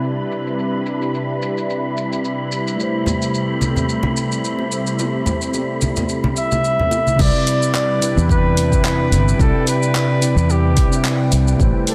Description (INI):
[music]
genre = sunset chillout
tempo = 109 BPM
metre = 4/4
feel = swing 55% on 16ths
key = C major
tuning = A4 = 441 Hz
[part]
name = mellow tine electric piano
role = accompaniment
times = 0.0-11.9 s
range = C3 to E5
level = -25 LUFS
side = equal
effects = digital delay
[part]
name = lush unison pad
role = sustained chords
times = 0.0-11.9 s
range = C3 to B4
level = -25 LUFS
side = equal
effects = chorus, phaser
[part]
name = deep house drum kit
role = drums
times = 0.0-11.9 s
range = crash cymbal, handclaps, hi-hat, shaker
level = -28 LUFS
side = equal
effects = low-pass filter on perc, low-pass filter on hats, low-pass filter on snare, low-pass filter on cymbals, low-pass filter on room
[part]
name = wind-like tuned noise texture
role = texture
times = 0.0-11.9 s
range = G5 to B5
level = -33 LUFS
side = equal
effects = built-in reverb
[part]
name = congas and bongos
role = percussion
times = 3.1-7.2 s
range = none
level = -24 LUFS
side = equal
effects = none
[part]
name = warm flugelhorn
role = melody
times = 6.4-11.9 s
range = G4 to E5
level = -23 LUFS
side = equal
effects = delay
[part]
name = fingered electric bass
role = bass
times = 7.2-11.7 s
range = G1 to E2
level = -19 LUFS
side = equal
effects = tube saturation
[part]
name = electronic kick drum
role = drums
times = 7.2-11.7 s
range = none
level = -20 LUFS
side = equal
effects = none
[sound]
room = moderate concert hall reverb, RT60 2.4 s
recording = dense, heavily limited modern master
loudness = -18 LUFS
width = mono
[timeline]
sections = 0.0-7.2 A section; 7.2-11.9 B section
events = none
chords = 0.0 Cmaj9; 2.8 Am9; 7.2 Cmaj9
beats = 0.04 | 0.58 1.14 1.69 2.24 | 2.79 3.34 3.89 4.44 | 4.99 5.54 6.09 6.64 | 7.19 7.74 8.29 8.84 | 9.39 9.94 10.49 11.04 | 11.59